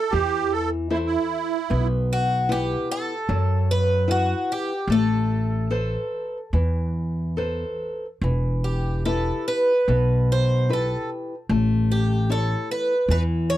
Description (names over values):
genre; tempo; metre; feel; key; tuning
fado-style ballad; 74 BPM; 4/4; uneven beats, rubato; unclear; A4 = 441 Hz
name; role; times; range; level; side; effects
picked twelve-string acoustic guitar; melody; 0.0-13.6 s; F#4 to C#5; -25 LUFS; right 1 dB; none
musette accordion; second line; 0.0-1.9 s; E4 to A4; -23 LUFS; right 9 dB; none
nylon-string guitar; accompaniment; 0.1-13.6 s; B2 to F#5; -26 LUFS; left 3 dB; none
upright bass; bass; 0.1-13.6 s; E1 to F#2; -23 LUFS; equal; none
room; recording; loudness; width
light reverb; dry, close 1970s-style studio recording; -20 LUFS; side -13 dB against mid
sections
0.0-13.6 A section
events
none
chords
0.0 Am; 1.7 Bsus4; 4.9 Amadd9; 8.2 Em; 11.5 A